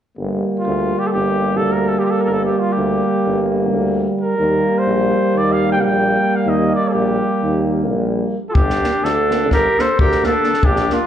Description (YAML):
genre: balkan folk, Balkan brass band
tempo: free time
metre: none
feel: none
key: G minor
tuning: A4 = 440 Hz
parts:
  - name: warm euphonium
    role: accompaniment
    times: 0.2-11.0 s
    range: G3 to Bb3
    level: -21 LUFS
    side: right 4 dB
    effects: slapback echo
  - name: warm trombone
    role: accompaniment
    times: 0.2-11.0 s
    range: Bb3 to D4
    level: -22 LUFS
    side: left 5 dB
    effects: slapback echo
  - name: clear tuba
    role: bass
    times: 0.2-10.9 s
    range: G1 to Eb2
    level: -22 LUFS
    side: left 1 dB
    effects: none
  - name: clear flugelhorn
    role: melody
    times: 0.6-11.1 s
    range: F4 to G5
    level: -19 LUFS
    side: right 1 dB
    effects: slapback echo
  - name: warm clarinet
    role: second line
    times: 8.5-11.1 s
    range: D4 to A4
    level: -21 LUFS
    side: left 2 dB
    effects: slapback echo
  - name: compact cocktail drum kit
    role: percussion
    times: 8.6-11.0 s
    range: kick drum, snare drum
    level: -19 LUFS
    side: left 1 dB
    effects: none
room: light reverb, small room ambience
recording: live gig heard through the venue's PA, club reverb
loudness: -15 LUFS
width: side -9 dB against mid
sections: 0.2-8.6 A section; 8.6-11.1 B section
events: none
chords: 0.2 Gm; 4.4 Eb; 8.6 Gm